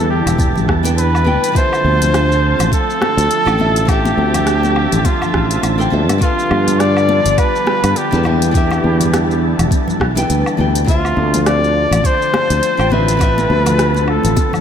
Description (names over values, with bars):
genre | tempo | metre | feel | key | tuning
sunset chillout | 103 BPM | 4/4 | swing 57% on 16ths | D dorian | A4 = 439 Hz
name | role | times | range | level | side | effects
clear flugelhorn | melody | 0.0-14.6 s | F4 to D5 | -17 LUFS | equal | ping-pong delay, slapback echo
nylon-string guitar | accompaniment | 0.0-14.6 s | D3 to A5 | -22 LUFS | moving between left 4 dB and right 3 dB | auto-pan, ping-pong delay, slapback echo
lush unison pad | sustained chords | 0.0-14.6 s | D3 to E5 | -22 LUFS | equal | chorus
sustaining fretless electric bass | bass | 0.0-14.3 s | E1 to G2 | -16 LUFS | equal | none
wind-like tuned noise texture | texture | 0.0-14.6 s | A5 | -27 LUFS | right 4 dB | built-in reverb
smooth R&B drum kit | drums | 0.3-14.6 s | hi-hat, rim click, shaker, woodblock | -23 LUFS | equal | slapback echo
congas | percussion | 0.3-14.6 s | none | -25 LUFS | left 4 dB | none
electronic kick drum | drums | 0.4-14.5 s | none | -16 LUFS | equal | none
room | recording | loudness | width
moderate lush hall reverb, RT60 1.9 s | big arena sound | -12 LUFS | side -8 dB against mid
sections
0.0-14.6 A section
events
none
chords
0.0 Em7; 1.6 Dm7; 6.2 G7; 8.3 Em7; 10.9 Dm7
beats
0.39 0.97 | 1.55 2.14 2.72 3.30 | 3.88 4.47 5.05 5.63 | 6.21 6.80 7.38 7.96 | 8.54 9.13 9.71 10.29 | 10.88 11.46 12.04 12.62 | 13.21 13.79 14.37